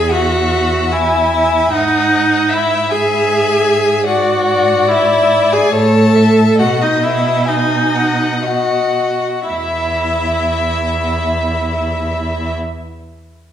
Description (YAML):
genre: classical, slow romantic movement for string quartet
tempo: 56-78 BPM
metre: 3/4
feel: rubato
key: E major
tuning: A4 = 440 Hz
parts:
  - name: clear violin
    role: melody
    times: 0.0-12.5 s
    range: D#5 to A5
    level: -21 LUFS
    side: left 7 dB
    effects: none
  - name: rich violin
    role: second line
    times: 0.0-12.5 s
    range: C#5 to G#5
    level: -19 LUFS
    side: left 4 dB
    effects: none
  - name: rich viola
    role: accompaniment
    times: 0.0-12.5 s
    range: D#4 to A4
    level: -15 LUFS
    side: right 1 dB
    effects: none
  - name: clear cello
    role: bass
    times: 0.0-12.6 s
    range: E2 to B2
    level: -19 LUFS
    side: right 2 dB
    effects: none
room: wet recital hall reverb, RT60 1.3 s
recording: recorded in a church or concert hall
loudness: -12 LUFS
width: side -10 dB against mid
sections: 0.0-9.5 A section; 9.5-12.6 B section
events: slowing down 2.9-9.5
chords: 0.0 E; 1.7 E/G#; 4.1 E9/G#; 5.7 A; 6.6 B; 9.5 N.C.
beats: 0.11 0.93 | 1.73 2.52 3.29 | 4.07 4.88 5.73 | 6.58 7.48 8.44 | 9.48 10.52 11.56